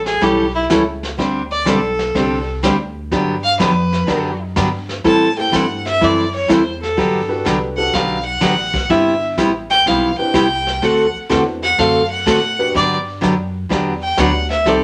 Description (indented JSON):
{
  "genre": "country, western swing",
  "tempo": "125 BPM",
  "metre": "4/4",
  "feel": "swing 67% on 8ths",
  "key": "G major",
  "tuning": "A4 = 440 Hz",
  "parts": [
    { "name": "clear fiddle", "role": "second line", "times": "0.0-14.8 s", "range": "E4 to A5", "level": "-20 LUFS", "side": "equal", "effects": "none" },
    { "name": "upright bass", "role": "bass", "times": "0.0-14.8 s", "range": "G1 to A2", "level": "-27 LUFS", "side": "equal", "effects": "none" },
    { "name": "vintage brush drum kit", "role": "drums", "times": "0.1-14.8 s", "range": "brushed snare drum, hi-hat, kick drum, snare drum", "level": "-27 LUFS", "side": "equal", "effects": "none" },
    { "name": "picked steel-string acoustic guitar", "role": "accompaniment", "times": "0.2-14.8 s", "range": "C3 to A4", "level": "-18 LUFS", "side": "equal", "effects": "none" },
    { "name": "dark upright piano", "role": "accompaniment", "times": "5.4-14.5 s", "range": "A3 to B4", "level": "-25 LUFS", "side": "equal", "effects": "none" }
  ],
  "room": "wet studio reverb, RT60 0.6 s",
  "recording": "none",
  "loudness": "-17 LUFS",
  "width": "mono",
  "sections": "0.0-14.8 A section",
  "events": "fiddle solo 0.0-14.8",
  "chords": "0.0 A7; 1.2 D7sus4; 3.1 Gmaj7; 5.0 Am7; 7.0 Gmaj7; 8.9 Cmaj7; 10.8 D13; 12.7 Gmaj7"
}